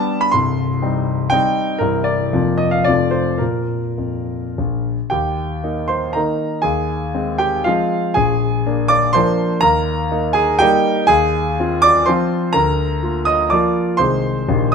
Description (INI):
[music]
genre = classical, romantic triple-time dance for piano with dotted rhythms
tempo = 98-131 BPM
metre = 3/4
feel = rubato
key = Bb major, Eb major from 5.1 s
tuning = A4 = 439 Hz
[part]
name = warm grand piano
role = solo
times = 0.0-14.7 s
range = C1 to Eb6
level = -15 LUFS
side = equal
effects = none
[sound]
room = light reverb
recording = close, detailed microphones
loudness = -15 LUFS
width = side -6 dB against mid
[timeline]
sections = 0.0-5.1 A section; 5.1-14.7 B section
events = none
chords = 0.3 Cm; 1.8 C7; 2.3 Bb/F; 2.9 F; 3.4 Bb5; 5.1 Eb; 6.7 Fm/Eb; 8.2 Bb7; 9.6 Eb; 11.1 Fm7/Eb; 12.6 Bb/D; 14.0 Ab/C